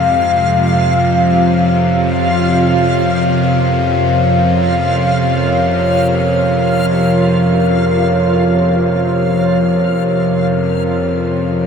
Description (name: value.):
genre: ambient.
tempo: free time.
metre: none.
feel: none.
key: unclear.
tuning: A4 = 440 Hz.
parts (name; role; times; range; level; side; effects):
dark analog pad; sustained chords; 0.0-11.7 s; F3 to F5; -14 LUFS; left 1 dB; chorus.
bowed-like drone; drone; 0.0-11.7 s; F2 to C3; -15 LUFS; right 1 dB; built-in reverb.
backwards swelling texture; texture; 0.0-11.7 s; F4 to F5; -21 LUFS; right 1 dB; built-in reverb, wide subtle chorus.
room: wet huge ambient reverb, RT60 7.2 s.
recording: dreamy mix soaked in reverb.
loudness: -11 LUFS.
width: side -6 dB against mid.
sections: 0.0-11.7 A section.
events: none.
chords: 0.0 Fmadd9; 0.9 Bbm/F.